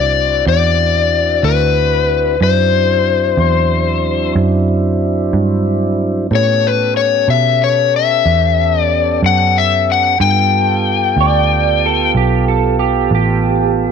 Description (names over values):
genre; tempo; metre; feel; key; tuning
slow blues; 62 BPM (dotted quarters); 12/8; straight; D mixolydian; A4 = 442 Hz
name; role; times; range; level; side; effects
overdriven slide guitar; melody; 0.0-12.1 s; B4 to G5; -14 LUFS; left 10 dB; none
mellow tonewheel organ; sustained chords; 0.0-13.9 s; F#3 to A4; -19 LUFS; right 3 dB; slow rotary speaker
vintage muted picked electric bass; bass; 0.0-13.9 s; A1 to B2; -16 LUFS; right 2 dB; none
electric guitar through a small old amp; second line; 11.2-13.9 s; G4 to D5; -18 LUFS; right 13 dB; analog chorus
room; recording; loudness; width
moderate echo chamber reverb, RT60 1.5 s; 1960s-style stereo with parts hard left and right; -11 LUFS; side -6 dB against mid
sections
0.0-13.9 A section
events
none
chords
0.0 D9; 6.3 A9; 10.2 G9